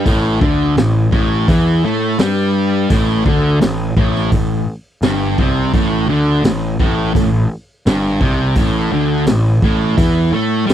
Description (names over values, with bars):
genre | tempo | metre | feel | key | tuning
blues rock power trio and southern rock | 85 BPM | 4/4 | straight | A minor | A4 = 440 Hz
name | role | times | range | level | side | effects
thick fuzz guitar | riff | 0.0-10.7 s | G2 to A3 | -15 LUFS | equal | distortion
fuzz picked electric bass | bass | 0.0-10.7 s | G1 to A2 | -18 LUFS | equal | overdrive
raw garage drum kit | drums | 0.1-10.7 s | hi-hat, kick drum, snare drum | -17 LUFS | equal | none
room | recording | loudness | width
little or no reverb | dry, close 1970s-style studio recording | -13 LUFS | side -10 dB against mid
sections
0.0-10.7 A section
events
none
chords
0.0 Am